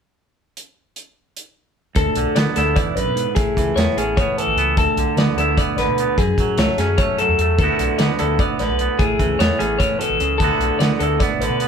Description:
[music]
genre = math rock and midwest emo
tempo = 299 BPM (eighths)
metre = 7/8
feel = straight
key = D lydian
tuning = A4 = 440 Hz
[part]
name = modern studio drum kit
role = drums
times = 0.6-11.7 s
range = hi-hat, kick drum, snare drum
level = -22 LUFS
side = equal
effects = none
[part]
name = twangy electric guitar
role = accompaniment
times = 1.9-11.7 s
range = D2 to F#4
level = -22 LUFS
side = right 7 dB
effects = none
[part]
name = electric guitar through a small old amp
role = arpeggios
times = 2.0-11.7 s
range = G#4 to D5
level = -20 LUFS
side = left 3 dB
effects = none
[part]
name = fingered electric bass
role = bass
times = 2.0-11.7 s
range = G#1 to D3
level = -23 LUFS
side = equal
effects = none
[sound]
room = moderate studio reverb, RT60 0.8 s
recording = band playing live in one room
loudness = -16 LUFS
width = side -7 dB against mid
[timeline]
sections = 0.6-2.0 A section; 2.0-11.7 B section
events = none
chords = 0.6 N.C.; 2.0 D69; 3.4 Amaj9; 4.8 Dsus2; 6.2 F#m9; 7.6 D69; 9.0 Amaj9; 10.4 D69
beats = | 0.56 0.77 0.96 1.17 1.37 1.57 1.77 | 1.97 2.17 2.37 2.57 2.77 2.97 3.17 | 3.37 3.57 3.77 3.97 4.17 4.37 4.57 | 4.78 4.98 5.18 5.38 5.58 5.78 5.98 | 6.18 6.38 6.58 6.78 6.98 7.18 7.38 | 7.59 7.79 7.99 8.19 8.39 8.59 8.79 | 8.99 9.19 9.39 9.59 9.79 9.99 10.20 | 10.40 10.60 10.80 11.00 11.20 11.40 11.60

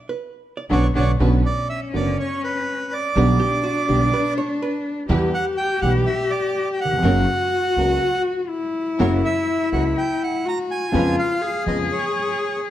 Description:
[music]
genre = tango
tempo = 123 BPM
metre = 4/4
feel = rubato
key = B harmonic minor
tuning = A4 = 436 Hz
[part]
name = archtop guitar, miked and amplified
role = second line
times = 0.0-5.2 s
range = F#4 to D5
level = -30 LUFS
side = right 4 dB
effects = none
[part]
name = bandoneon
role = melody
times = 0.7-12.6 s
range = B4 to A#5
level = -24 LUFS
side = right 3 dB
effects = none
[part]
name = warm cello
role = second line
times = 0.7-12.7 s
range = C#4 to G#4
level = -23 LUFS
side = left 3 dB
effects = none
[part]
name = warm concert grand piano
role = accompaniment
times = 0.7-11.9 s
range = F#1 to G4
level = -23 LUFS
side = equal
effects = none
[part]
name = warm symphonic string section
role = stabs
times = 0.7-11.9 s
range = C#4 to B4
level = -31 LUFS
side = right 4 dB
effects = none
[part]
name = upright bass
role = bass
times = 0.7-11.9 s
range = F#1 to E#2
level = -22 LUFS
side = right 1 dB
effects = none
[sound]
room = moderate large studio reverb, RT60 1.3 s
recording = none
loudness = -18 LUFS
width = side -12 dB against mid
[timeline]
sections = 0.0-1.2 A section; 1.2-12.7 A section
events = band accent 0.0-1.2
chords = 0.0 Bmadd9; 3.2 G/B; 5.1 Em; 7.0 F#; 10.9 C#7/E#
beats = 0.21 0.71 | 1.20 1.69 2.18 2.67 | 3.15 3.64 4.13 4.61 | 5.09 5.58 6.06 6.55 | 7.04 7.52 8.01 8.50 | 8.99 9.48 9.97 10.46 | 10.94 11.43 11.91 12.40

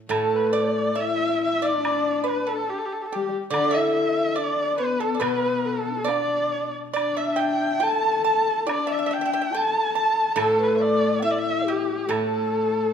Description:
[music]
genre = chinese traditional, Chinese chamber ensemble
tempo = 70 BPM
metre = 2/4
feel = rubato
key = A shang mode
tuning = A4 = 441 Hz
[part]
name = steel-string zither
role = accompaniment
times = 0.0-12.9 s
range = A2 to D3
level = -27 LUFS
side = right 2 dB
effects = none
[part]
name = dark erhu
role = melody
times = 0.1-12.9 s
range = G4 to A5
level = -26 LUFS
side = equal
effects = none
[part]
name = breathy mellow xiao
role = second line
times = 0.1-12.9 s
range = D4 to A5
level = -28 LUFS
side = left 4 dB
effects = none
[part]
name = dark horsehead fiddle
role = second line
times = 0.1-12.9 s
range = G3 to A4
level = -28 LUFS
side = left 5 dB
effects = none
[part]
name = pipa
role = second line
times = 0.1-12.9 s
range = G4 to A5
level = -29 LUFS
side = right 8 dB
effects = none
[part]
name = woodblock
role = percussion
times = 0.1-12.3 s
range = none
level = -34 LUFS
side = equal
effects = none
[sound]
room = moderate recital hall reverb, RT60 1.4 s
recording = dark, warm production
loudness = -21 LUFS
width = side -8 dB against mid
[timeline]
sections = 0.1-12.9 A section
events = none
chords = none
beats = | 0.11 0.98 | 1.85 2.69 | 3.53 4.37 | 5.22 6.08 | 6.96 7.83 | 8.69 9.54 | 10.38 11.24 | 12.11

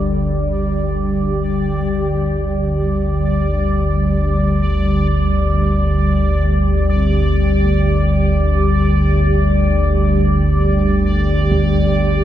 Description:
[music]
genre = dark ambient drone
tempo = free time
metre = none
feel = none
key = unclear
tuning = A4 = 440 Hz
[part]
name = sweeping resonant pad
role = sustained chords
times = 0.0-12.2 s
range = D3 to G4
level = -18 LUFS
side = right 1 dB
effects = chorus
[part]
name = deep rumbling drone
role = drone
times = 0.0-12.2 s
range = G1 to D2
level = -17 LUFS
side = equal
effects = built-in reverb
[part]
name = bubbling stepped-filter texture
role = texture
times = 0.0-12.2 s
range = D5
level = -23 LUFS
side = right 1 dB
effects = chorus, built-in reverb
[part]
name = gamelan-type bossed gongs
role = arpeggios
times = 1.9-12.2 s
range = D3 to C4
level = -35 LUFS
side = left 2 dB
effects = none
[part]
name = taiko ensemble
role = percussion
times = 11.5-11.7 s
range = none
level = -24 LUFS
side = right 2 dB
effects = none
[sound]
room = moderate huge ambient reverb, RT60 7.8 s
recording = dark, warm production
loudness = -14 LUFS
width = side -11 dB against mid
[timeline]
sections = 0.0-12.2 A section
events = none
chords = 0.0 G5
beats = free time

